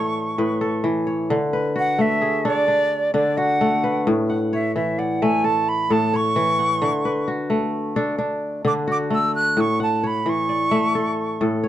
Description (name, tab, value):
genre	west african traditional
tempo	87 BPM (dotted quarters)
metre	12/8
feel	straight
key	D lydian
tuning	A4 = 440 Hz
part	bright silver concert flute	melody	0.0-11.4 s	D5 to F#6	-21 LUFS	right 2 dB	none
part	kora	arpeggios	0.0-11.7 s	A2 to F#5	-21 LUFS	left 1 dB	none
room	light reverb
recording	dark, warm production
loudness	-18 LUFS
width	side -12 dB against mid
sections	0.0-1.3 A section; 1.3-11.7 B section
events	flute solo 1.3-11.7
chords	0.0 A; 1.3 D; 4.1 A; 6.8 D; 9.6 A